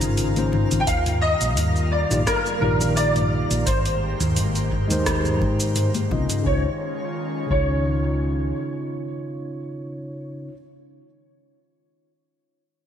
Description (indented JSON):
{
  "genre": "sunset chillout",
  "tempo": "86 BPM",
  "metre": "4/4",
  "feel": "swing 54% on 16ths",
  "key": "Db lydian",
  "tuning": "A4 = 440 Hz",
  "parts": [
    { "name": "warm concert grand piano", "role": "melody", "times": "0.0-10.5 s", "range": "Ab4 to G5", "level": "-26 LUFS", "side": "equal", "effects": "ensemble chorus, digital delay" },
    { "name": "mellow tine electric piano", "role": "accompaniment", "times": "0.0-10.5 s", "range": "Db3 to Eb5", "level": "-27 LUFS", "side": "moving between left 6 dB and right 2 dB", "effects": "auto-pan, digital delay" },
    { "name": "airy breathy pad", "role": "sustained chords", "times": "0.0-9.5 s", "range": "Eb3 to F5", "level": "-30 LUFS", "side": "left 1 dB", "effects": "chorus" },
    { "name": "hollow-body short-scale fingered electric bass", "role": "bass", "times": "0.0-8.5 s", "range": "Ab1 to Ab2", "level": "-24 LUFS", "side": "equal", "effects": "tube saturation" },
    { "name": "smooth R&B drum kit", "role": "drums", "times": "0.0-6.4 s", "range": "hi-hat, rim click, shaker, toms", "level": "-26 LUFS", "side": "equal", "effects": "overdrive, gated reverb" },
    { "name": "twinkling granular texture", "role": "texture", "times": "0.0-6.5 s", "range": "Bb5", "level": "-40 LUFS", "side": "right 2 dB", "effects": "built-in reverb" },
    { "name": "congas", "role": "percussion", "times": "0.4-6.3 s", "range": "none", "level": "-33 LUFS", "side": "left 5 dB", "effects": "none" },
    { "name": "electronic kick drum", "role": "drums", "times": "0.9-7.7 s", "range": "none", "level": "-28 LUFS", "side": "equal", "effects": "none" }
  ],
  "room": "moderate lush hall reverb, RT60 1.8 s",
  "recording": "bright 1980s-style digital production",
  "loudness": "-20 LUFS",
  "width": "side -9 dB against mid",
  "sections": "0.0-6.5 A section; 6.5-9.2 B section",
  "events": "none",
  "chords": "0.0 Dbmaj9; 0.9 Ebmaj9; 3.7 Abmaj9; 6.5 Dbadd9",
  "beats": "0.18 | 0.88 1.57 2.27 2.97 | 3.67 4.37 5.06 5.76 | 6.46 7.16 7.85 8.55"
}